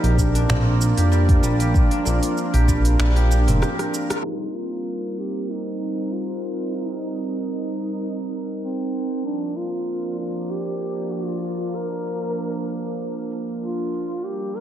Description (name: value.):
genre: organic downtempo.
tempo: 96 BPM.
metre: 4/4.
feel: swing 54% on 16ths.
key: unclear.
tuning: A4 = 440 Hz.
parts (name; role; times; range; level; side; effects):
dark duduk; melody; 0.0-14.6 s; C4 to Bb4; -28 LUFS; right 1 dB; analog delay.
warm analog pad; sustained chords; 0.0-14.6 s; F3 to Eb5; -28 LUFS; right 2 dB; chorus, sidechain pumping.
guzheng; arpeggios; 0.0-6.6 s; G3 to G4; -29 LUFS; equal; ping-pong delay.
smooth synth bass; bass; 0.0-3.6 s; F1 to Bb1; -18 LUFS; equal; sidechain pumping.
afro-pop drum kit; drums; 0.0-14.6 s; finger snaps, hi-hat, rim click, shaker, toms; -28 LUFS; right 1 dB; low-pass filter on perc, low-pass filter on hats, low-pass filter on snare, low-pass filter on toms.
electronic kick drum; drums; 0.2-2.8 s; none; -18 LUFS; equal; none.
room: light reverb.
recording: low-pass filter.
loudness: -20 LUFS.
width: side -11 dB against mid.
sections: 0.0-4.2 A section; 4.2-14.6 B section.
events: break 3.6-4.2; drum fill 3.6-4.2; band accent 4.1-4.4; filter sweep 4.2-14.6.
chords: 0.0 Bb; 4.2 Cm7; 9.2 Bb.